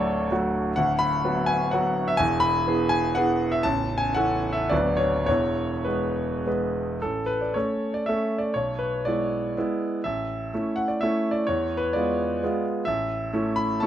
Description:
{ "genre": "classical, romantic triple-time dance for piano with dotted rhythms", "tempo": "98-139 BPM", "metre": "3/4", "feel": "rubato", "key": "A major", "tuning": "A4 = 441 Hz", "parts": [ { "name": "bright concert grand piano", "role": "solo", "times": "0.0-13.9 s", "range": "A0 to B5", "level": "-22 LUFS", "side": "equal", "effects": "none" } ], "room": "light reverb", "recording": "none", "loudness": "-22 LUFS", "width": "side -11 dB against mid", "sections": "0.0-7.0 A section; 7.0-13.9 B section", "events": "none", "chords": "0.0 D; 0.8 Bm/D; 2.2 E; 3.6 A; 4.7 Bm/D; 5.3 E; 7.0 A; 8.5 E7/B; 10.0 A; 11.5 E7b9; 12.9 A", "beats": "0.31 | 0.77 1.24 1.72 | 2.19 2.67 3.16 | 3.65 4.15 4.72 | 5.27 5.87 6.47 | 7.03 7.55 8.05 | 8.54 9.05 9.56 | 10.04 10.52 11.01 | 11.47 11.94 12.42 | 12.86 13.32 13.81" }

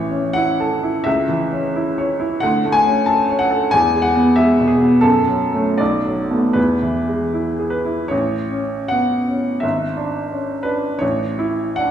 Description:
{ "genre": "classical, romantic character piece for solo piano", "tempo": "73-94 BPM", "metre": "2/4", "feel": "rubato", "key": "A major", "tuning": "A4 = 440 Hz", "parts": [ { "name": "clear upright piano", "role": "solo", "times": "0.0-11.9 s", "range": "G#1 to A5", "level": "-16 LUFS", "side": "equal", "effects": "none" } ], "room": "wet recital hall reverb, RT60 1.4 s", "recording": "recorded in a church or concert hall", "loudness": "-16 LUFS", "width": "side -9 dB against mid", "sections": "0.0-8.1 A section; 8.1-11.9 A section", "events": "none", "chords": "0.0 A; 1.1 C#m; 2.4 D5; 3.7 E; 5.0 F#m; 5.8 Bm7; 6.6 E; 8.1 A; 9.6 E7/G#; 11.0 A", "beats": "0.36 | 1.06 1.75 | 2.43 3.08 | 3.73 4.38 | 5.04 5.80 | 6.57 7.35 | 8.12 8.91 | 9.63 10.32 | 11.02 11.78" }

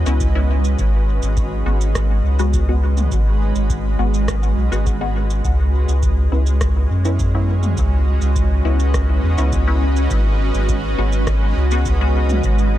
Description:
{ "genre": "ambient dub", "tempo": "103 BPM", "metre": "4/4", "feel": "straight", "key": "G# minor", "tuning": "A4 = 435 Hz", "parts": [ { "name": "granular cloud pad", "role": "sustained chords", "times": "0.0-12.8 s", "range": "G#3 to D#5", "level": "-24 LUFS", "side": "right 2 dB", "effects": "built-in reverb" }, { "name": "soft dub sub bass", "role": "bass", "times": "0.0-12.8 s", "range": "G#1 to F#2", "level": "-17 LUFS", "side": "equal", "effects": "none" }, { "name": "filtered dub chord stab", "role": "stabs", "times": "0.1-12.2 s", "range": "G#3 to F#4", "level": "-28 LUFS", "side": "left 3 dB", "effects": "phaser, cassette tape, dub echo" }, { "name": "organic electronic drum kit", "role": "drums", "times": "0.1-12.7 s", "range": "rim click, shaker, toms", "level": "-30 LUFS", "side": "right 1 dB", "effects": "dub echo" }, { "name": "electronic kick drum", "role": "drums", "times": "0.2-12.6 s", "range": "none", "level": "-23 LUFS", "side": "equal", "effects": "none" } ], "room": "little or no reverb", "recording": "none", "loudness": "-15 LUFS", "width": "side -13 dB against mid", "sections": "0.0-12.8 A section", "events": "none", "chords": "0.0 C#m7; 0.8 G#m7; 5.4 C#m7; 10.1 G#m7", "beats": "0.20 | 0.79 1.37 1.95 2.53 | 3.12 3.70 4.28 4.86 | 5.45 6.03 6.61 7.19 | 7.78 8.36 8.94 9.52 | 10.11 10.69 11.27 11.86 | 12.44" }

